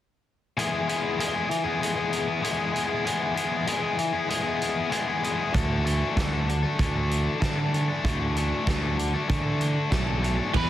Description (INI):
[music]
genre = indie rock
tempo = 96 BPM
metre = 4/4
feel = straight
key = E mixolydian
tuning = A4 = 440 Hz
[part]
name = biting overdriven guitar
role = riff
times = 0.6-10.7 s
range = D3 to A4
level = -26 LUFS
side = left 3 dB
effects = none
[part]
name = loose indie drum kit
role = drums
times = 0.6-10.7 s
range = crash cymbal, hi-hat, kick drum, snare drum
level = -30 LUFS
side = right 1 dB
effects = none
[part]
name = fuzz fingered electric bass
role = bass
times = 5.5-10.7 s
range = B1 to D3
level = -26 LUFS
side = right 1 dB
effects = overdrive
[part]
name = overdriven electric guitar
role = riff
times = 10.5-10.7 s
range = E2 to E3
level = -28 LUFS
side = right 16 dB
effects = wide subtle chorus
[part]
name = octave-fuzz lead guitar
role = melody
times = 10.6-10.7 s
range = B4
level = -27 LUFS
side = equal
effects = distortion
[sound]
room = light reverb, studio ambience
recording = dense, heavily limited modern master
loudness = -23 LUFS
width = side -12 dB against mid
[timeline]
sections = 0.6-10.5 A section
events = none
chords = 0.6 E; 5.6 Dsus2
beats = | 0.58 1.20 1.82 2.44 | 3.06 3.69 4.31 4.93 | 5.55 6.17 6.80 7.42 | 8.04 8.67 9.29 9.92 | 10.54